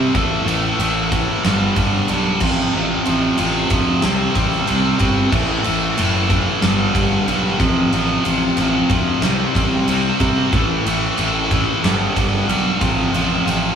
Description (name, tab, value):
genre	hard rock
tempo	92 BPM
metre	4/4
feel	straight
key	A minor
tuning	A4 = 440 Hz
part	high-gain distorted guitar	riff	0.0-13.8 s	F2 to C4	-18 LUFS	equal	distortion
part	fuzz fingered electric bass	bass	0.0-13.7 s	F#1 to C3	-22 LUFS	equal	overdrive
part	huge arena drum kit	drums	0.1-13.6 s	crash cymbal, kick drum, ride cymbal, snare drum	-21 LUFS	right 1 dB	none
room	moderate studio reverb, RT60 0.9 s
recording	band playing live in one room, studio ambience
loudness	-15 LUFS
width	side -7 dB against mid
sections	0.0-13.8 A section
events	none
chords	0.1 A5; 1.4 G; 2.4 F/A; 4.0 C5; 5.3 A5; 6.6 G; 7.6 F/A; 9.2 C5; 10.5 A5; 11.8 G; 12.8 F/A